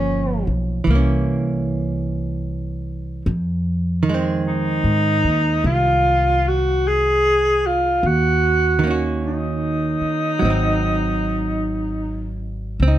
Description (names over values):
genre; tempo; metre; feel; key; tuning
jazz ballad; 50 BPM; 4/4; swing 67% on 8ths; unclear; A4 = 440 Hz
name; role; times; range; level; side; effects
breathy tenor saxophone; melody; 0.0-12.4 s; Db4 to Ab4; -19 LUFS; equal; plate reverb
archtop guitar, miked and amplified; accompaniment; 0.0-13.0 s; Eb3 to Gb4; -23 LUFS; right 4 dB; none
upright bass; bass; 0.0-13.0 s; G1 to Ab2; -21 LUFS; equal; none
room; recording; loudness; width
light reverb; close, detailed microphones; -17 LUFS; side -12 dB against mid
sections
0.0-13.0 A section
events
none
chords
0.0 Gm7b5; 0.9 C7b9; 3.3 Fm7; 8.0 Ebm7; 10.4 Ab7